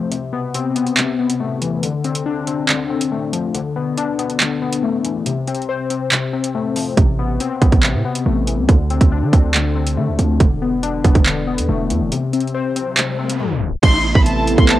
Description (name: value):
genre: hip hop, drill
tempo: 140 BPM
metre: 4/4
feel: half-time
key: A minor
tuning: A4 = 442 Hz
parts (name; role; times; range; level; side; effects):
- warbly lo-fi synth keys; accompaniment; 0.0-13.9 s; C3 to C5; -19 LUFS; left 5 dB; chorus
- drill drum kit; drums; 0.1-14.8 s; crash cymbal, handclaps, hi-hat, kick drum; -16 LUFS; right 2 dB; overdrive, cassette tape
- hard-hitting 808-style bass; bass; 7.0-14.8 s; E1 to D3; -19 LUFS; right 2 dB; none
- riser; sound effects; 12.8-13.8 s; none; -28 LUFS; right 1 dB; none
- warm studio violin section; melody; 13.8-14.8 s; A5 to C6; -19 LUFS; left 1 dB; cassette tape
- warbly tape-like pad; sustained chords; 14.0-14.8 s; C3 to E4; -18 LUFS; right 1 dB; chorus, built-in reverb
room: light reverb, digital ambience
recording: home recording on cassette, tape stop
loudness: -15 LUFS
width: side -14 dB against mid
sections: 0.0-13.8 A section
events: kick muted 0.1-7.0; break 12.1-13.8; riser 12.8-13.8; tape stop 13.4-13.8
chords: 0.1 Amadd9; 1.8 Dm7; 3.5 E7sus4; 5.3 F; 7.0 Amadd9; 8.7 Dm7; 10.4 E7sus4; 12.1 F; 13.8 Amadd9